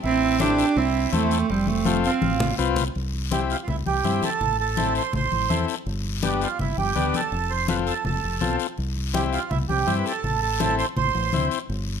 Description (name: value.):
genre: latin, cumbia.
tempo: 165 BPM.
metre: 4/4.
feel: straight.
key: C major.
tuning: A4 = 440 Hz.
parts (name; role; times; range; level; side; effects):
rich cello; melody; 0.0-2.6 s; G3 to D4; -22 LUFS; right 5 dB; none.
accordion; second line; 0.0-11.5 s; C4 to C5; -26 LUFS; right 9 dB; none.
fingered electric bass; bass; 0.0-12.0 s; F1 to G2; -27 LUFS; equal; none.
congas; percussion; 0.0-12.0 s; none; -29 LUFS; left 3 dB; none.
guiro; percussion; 0.0-12.0 s; none; -35 LUFS; left 10 dB; none.
overdriven combo organ; accompaniment; 0.4-11.6 s; B3 to C5; -27 LUFS; left 9 dB; none.
room: light reverb.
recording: close, detailed microphones.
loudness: -21 LUFS.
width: side -7 dB against mid.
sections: 0.0-2.9 A section; 2.9-12.0 B section.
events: drum fill 1.9-2.9; accordion solo 2.9-12.0.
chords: 0.0 Am7; 1.5 F; 2.9 C; 4.4 Am; 5.9 G; 7.3 F; 8.8 C; 10.2 Am.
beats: | 0.04 0.40 0.76 1.13 | 1.49 1.86 2.22 2.58 | 2.95 3.31 3.68 4.04 | 4.41 4.77 5.13 5.50 | 5.86 6.23 6.59 6.96 | 7.32 7.69 8.05 8.42 | 8.78 9.14 9.51 9.87 | 10.24 10.60 10.97 11.33 | 11.70.